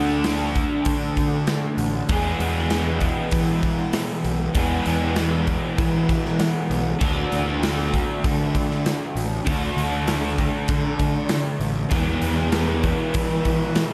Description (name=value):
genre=rock, shoegaze and dream pop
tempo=98 BPM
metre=4/4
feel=straight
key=D lydian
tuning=A4 = 440 Hz
part: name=raw garage guitar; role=riff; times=0.0-13.9 s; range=E2 to G#4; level=-26 LUFS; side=equal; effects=overdrive, lush chorus
part: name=fuzz picked electric bass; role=bass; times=0.0-13.8 s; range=A1 to E3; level=-28 LUFS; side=equal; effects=overdrive
part: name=big rock drum kit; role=drums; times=0.2-13.9 s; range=hi-hat, kick drum, snare drum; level=-28 LUFS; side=equal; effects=none
room=wet huge ambient reverb, RT60 7.4 s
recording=dreamy mix soaked in reverb, lossy compression artefacts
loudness=-22 LUFS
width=mono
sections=0.0-13.9 A section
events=none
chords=0.0 D; 2.1 E; 7.0 D; 11.9 E